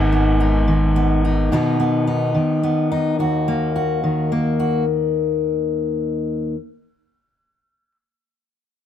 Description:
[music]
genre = folk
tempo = 72 BPM (dotted quarters)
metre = 6/8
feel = straight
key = Eb minor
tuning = A4 = 440 Hz
[part]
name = fingerpicked steel-string acoustic guitar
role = accompaniment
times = 0.0-6.5 s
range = Eb2 to Ab4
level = -18 LUFS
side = left 2 dB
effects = none
[part]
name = upright bass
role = bass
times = 0.0-1.5 s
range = Ab1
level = -19 LUFS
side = right 1 dB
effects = none
[sound]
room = light reverb, small room ambience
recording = dense, heavily limited modern master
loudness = -17 LUFS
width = side -10 dB against mid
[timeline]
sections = 0.0-4.9 A section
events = none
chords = 0.0 Abm; 1.5 B; 3.2 Ebm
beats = 0.67 | 1.51 2.35 | 3.19 4.02

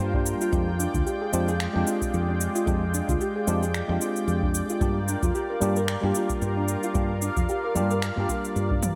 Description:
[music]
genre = sunset chillout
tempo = 112 BPM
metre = 4/4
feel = swing 56% on 16ths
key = F dorian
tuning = A4 = 440 Hz
[part]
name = tine electric piano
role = accompaniment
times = 0.0-9.0 s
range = G3 to G4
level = -32 LUFS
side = equal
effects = overdrive, tape echo
[part]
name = lush unison pad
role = sustained chords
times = 0.0-9.0 s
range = Ab3 to G5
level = -34 LUFS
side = equal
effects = chorus
[part]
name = woody fretless electric bass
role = bass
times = 0.0-8.9 s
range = D2 to G2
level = -29 LUFS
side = equal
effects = none
[part]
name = soft round pluck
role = arpeggios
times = 0.1-8.8 s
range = D4 to D5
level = -34 LUFS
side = equal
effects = lush chorus, tape echo
[part]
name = electronic kick drum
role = drums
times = 0.1-8.8 s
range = none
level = -31 LUFS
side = equal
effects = none
[part]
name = deep house drum kit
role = drums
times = 0.3-8.9 s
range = cabasa, finger snaps, toms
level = -35 LUFS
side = equal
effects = none
[sound]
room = moderate lush hall reverb, RT60 2.8 s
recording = none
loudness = -26 LUFS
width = mono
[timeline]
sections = 0.0-9.0 A section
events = none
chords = 0.0 Gm7; 0.5 Fm69; 4.8 Gm7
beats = | 0.53 1.06 1.60 2.13 | 2.67 3.20 3.74 4.28 | 4.81 5.35 5.88 6.42 | 6.95 7.49 8.03 8.56

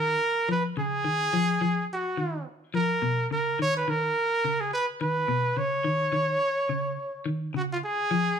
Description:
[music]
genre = afrobeat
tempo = 106 BPM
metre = 4/4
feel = swing 55% on 16ths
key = unclear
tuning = A4 = 439 Hz
[part]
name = clear trumpet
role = melody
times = 0.0-8.4 s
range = E#4 to C#5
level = -26 LUFS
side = right 1 dB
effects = none
[part]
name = semi-hollow electric guitar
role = arpeggios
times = 0.0-8.3 s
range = B2 to E#3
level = -29 LUFS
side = left 2 dB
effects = vibrato effect
[sound]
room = moderate large studio reverb, RT60 1.0 s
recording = band playing live in one room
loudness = -24 LUFS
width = side -7 dB against mid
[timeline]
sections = 0.0-8.4 A section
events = none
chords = 0.0 F#maj7 (rootless); 3.0 Bmaj9; 7.5 F#maj7(no3) (rootless)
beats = 0.20 | 0.77 1.33 1.90 2.46 | 3.02 3.59 4.15 4.72 | 5.28 5.85 6.41 6.97 | 7.54 8.10

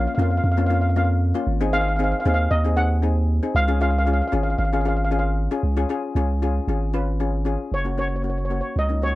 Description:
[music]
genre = calypso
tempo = 116 BPM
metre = 4/4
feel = straight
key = unclear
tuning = A4 = 440 Hz
[part]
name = steel pan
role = melody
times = 0.0-9.2 s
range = C#5 to F#5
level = -25 LUFS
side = equal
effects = none
[part]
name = steel pan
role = accompaniment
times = 0.0-9.2 s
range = A#3 to B4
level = -26 LUFS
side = left 4 dB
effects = none
[part]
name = punchy sub bass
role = bass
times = 0.0-9.2 s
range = F#1 to E#2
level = -21 LUFS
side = equal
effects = none
[sound]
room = little or no reverb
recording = dry, close 1970s-style studio recording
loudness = -19 LUFS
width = side -17 dB against mid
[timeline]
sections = 0.0-5.6 A section; 5.6-7.7 B section; 7.7-9.2 C section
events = none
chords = 0.0 A#m; 1.5 G#7; 3.6 C#; 7.7 F#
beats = 0.44 0.96 | 1.48 2.00 2.51 3.03 | 3.55 4.07 4.59 5.11 | 5.63 6.15 6.67 7.19 | 7.71 8.24 8.76

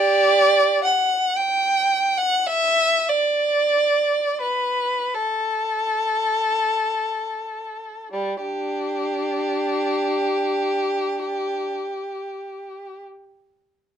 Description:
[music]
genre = classical, free, expressive piece for unaccompanied violin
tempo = 16-40 BPM (dotted quarters)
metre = 6/8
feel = rubato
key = G major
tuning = A4 = 440 Hz
[part]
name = warm violin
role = solo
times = 0.0-13.0 s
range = G3 to G5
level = -19 LUFS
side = equal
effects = none
[sound]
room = light reverb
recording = dark, warm production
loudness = -19 LUFS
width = side -8 dB against mid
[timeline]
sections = 0.0-8.1 A section; 8.1-13.2 B section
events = slowing down 0.0-8.1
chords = none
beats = 1.37 | 3.10 5.15 | 8.13 10.63

